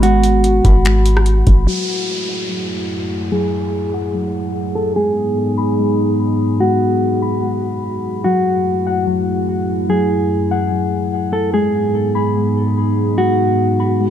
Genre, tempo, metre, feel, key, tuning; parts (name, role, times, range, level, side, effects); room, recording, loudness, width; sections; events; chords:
hip hop, atmospheric cloud-rap; 146 BPM; 4/4; half-time; F# dorian; A4 = 440 Hz
mellow electric guitar; melody; 0.0-14.1 s; F#4 to A4; -20 LUFS; equal; low-pass filter, ping-pong delay
dark analog pad; sustained chords; 0.0-14.1 s; F#2 to G#4; -19 LUFS; right 1 dB; wide subtle chorus, sidechain pumping, low-pass filter
muted felt-like synth keys; arpeggios; 0.0-14.1 s; F#3 to B5; -22 LUFS; left 4 dB; chorus, low-pass filter, ping-pong delay
warm 808-style bass; bass; 0.0-1.7 s; G#1; -13 LUFS; equal
booming analog drum machine; drums; 0.0-1.7 s; finger snaps, hi-hat, kick drum, rim click; -15 LUFS; equal
downlifter and reverse cymbal; sound effects; 1.7-5.0, 14.0-14.1 s; -27 LUFS; equal
light reverb, digital ambience; dark, warm production; -14 LUFS; side -10 dB against mid
0.0-1.7 A section; 1.7-14.1 B section
filter sweep 1.7-14.1
0.0 G#m7; 1.7 F#m9; 5.0 G#m7; 8.2 F#m9; 11.5 G#m7